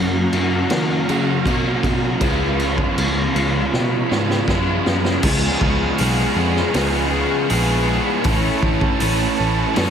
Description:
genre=rock, shoegaze and dream pop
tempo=80 BPM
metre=4/4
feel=straight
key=unclear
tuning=A4 = 440 Hz
part: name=analog string pad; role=sustained chords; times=0.0-9.9 s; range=E#4 to C#6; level=-29 LUFS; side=right 1 dB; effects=ensemble chorus
part: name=overdriven electric guitar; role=riff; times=0.0-9.9 s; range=F#2 to A4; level=-22 LUFS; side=left 9 dB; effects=lush chorus
part: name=overdriven electric guitar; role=riff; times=0.0-9.9 s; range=F#2 to A4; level=-22 LUFS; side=right 12 dB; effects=reverse reverb
part: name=tine electric piano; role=bass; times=0.0-9.9 s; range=A1 to D#3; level=-22 LUFS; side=equal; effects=none
part: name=raw garage drum kit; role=drums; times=0.3-9.9 s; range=crash cymbal, hi-hat, kick drum, snare drum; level=-23 LUFS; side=equal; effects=none
room=light reverb, small room ambience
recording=none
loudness=-16 LUFS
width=side -8 dB against mid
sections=0.0-5.2 A section; 5.2-9.9 B section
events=drum fill 3.7-5.2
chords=0.0 F#maj7; 2.2 C#7; 8.2 Aadd9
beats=0.71 1.46 | 2.22 2.97 3.72 4.48 | 5.23 5.99 6.74 7.49 | 8.25 9.00 9.75

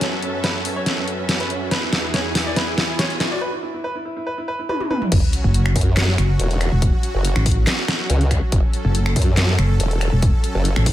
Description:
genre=heavy wobble dubstep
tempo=141 BPM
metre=4/4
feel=half-time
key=F# minor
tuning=A4 = 439 Hz
part: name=clear baby grand piano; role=melody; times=0.0-5.1 s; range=C#4 to D5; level=-27 LUFS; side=right 2 dB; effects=dub echo
part: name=supersaw pad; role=sustained chords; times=0.0-10.9 s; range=E2 to A4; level=-28 LUFS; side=equal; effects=sidechain pumping
part: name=dubstep drum kit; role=drums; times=0.0-10.9 s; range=crash cymbal, finger snaps, handclaps, hi-hat, snare drum, toms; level=-22 LUFS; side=equal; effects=none
part: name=riser and sub drop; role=sound effects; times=1.0-6.8 s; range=none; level=-29 LUFS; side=equal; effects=none
part: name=rich studio string section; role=texture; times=0.0-3.4 s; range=F#4 to A5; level=-31 LUFS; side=left 1 dB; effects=sidechain pumping
part: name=formant-sweep wobble bass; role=bass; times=5.1-10.7 s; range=E1 to F#2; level=-18 LUFS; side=equal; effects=chorus, overdrive
part: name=electronic kick drum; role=drums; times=5.1-10.9 s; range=none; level=-18 LUFS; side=equal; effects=none
part: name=pulsing pluck wobble bass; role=bass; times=5.4-10.9 s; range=E1 to A1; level=-17 LUFS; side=equal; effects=chorus, overdrive
room=digital ambience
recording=none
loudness=-17 LUFS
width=side -13 dB against mid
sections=0.0-5.1 A section; 5.1-10.9 B section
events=build-up 0.0-5.1; drum fill 0.0-3.4, 4.7-5.1; riser 1.0-3.4; break 3.4-5.1; drop 5.1-10.9; impact 5.1-6.8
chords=0.0 F#m; 1.7 E; 5.1 F#5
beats=| 0.01 0.44 0.86 1.29 | 1.71 2.14 2.56 2.99 | 3.42 3.84 4.27 4.69 | 5.12 5.54 5.97 6.39 | 6.82 7.25 7.67 8.10 | 8.52 8.95 9.37 9.80 | 10.22 10.65

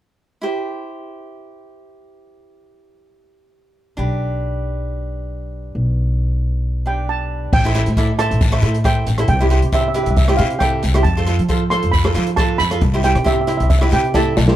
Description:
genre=calypso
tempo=136 BPM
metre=4/4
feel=swing 54% on 16ths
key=C major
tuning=A4 = 440 Hz
part: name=cavaquinho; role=accompaniment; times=0.4-14.6 s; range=D4 to D5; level=-22 LUFS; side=right 2 dB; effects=none
part: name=upright bass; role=bass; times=4.0-14.6 s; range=A1 to F3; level=-18 LUFS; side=equal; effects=none
part: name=steel pan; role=melody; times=6.9-14.6 s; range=E5 to C6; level=-22 LUFS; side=right 3 dB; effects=none
part: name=open jazz drum kit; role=drums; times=7.5-14.6 s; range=crash cymbal, hi-hat, kick drum, rim click, snare drum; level=-19 LUFS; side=equal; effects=none
part: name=guiro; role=percussion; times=7.5-14.5 s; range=none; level=-30 LUFS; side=left 5 dB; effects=none
room=little or no reverb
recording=dark, warm production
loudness=-15 LUFS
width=side -12 dB against mid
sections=0.4-7.5 A section; 7.5-14.6 B section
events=drum fill 14.1-14.6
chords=0.4 C; 4.0 G/B; 7.5 Am7; 9.3 C; 11.1 F; 12.8 Cmaj7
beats=| 0.43 0.87 1.32 1.76 | 2.21 2.65 3.09 3.54 | 3.98 4.42 4.87 5.31 | 5.75 6.20 6.64 7.08 | 7.53 7.97 8.41 8.85 | 9.29 9.73 10.17 10.61 | 11.05 11.50 11.94 12.38 | 12.82 13.26 13.70 14.14

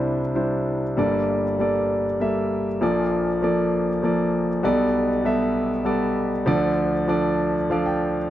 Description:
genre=folk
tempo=98 BPM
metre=3/4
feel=straight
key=unclear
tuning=A4 = 440 Hz
part: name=clear concert grand piano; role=solo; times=0.0-8.3 s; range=G1 to G5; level=-20 LUFS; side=equal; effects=none
room=little or no reverb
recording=dry, close 1970s-style studio recording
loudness=-20 LUFS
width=side -12 dB against mid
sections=1.0-8.3 A section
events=none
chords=0.0 Cadd9; 1.0 Gmadd9; 2.8 Bbmaj7; 4.6 Gadd9/B; 6.5 Dm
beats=0.35 | 0.97 1.59 2.20 | 2.81 3.42 4.03 | 4.64 5.25 5.86 | 6.47 7.09 7.70

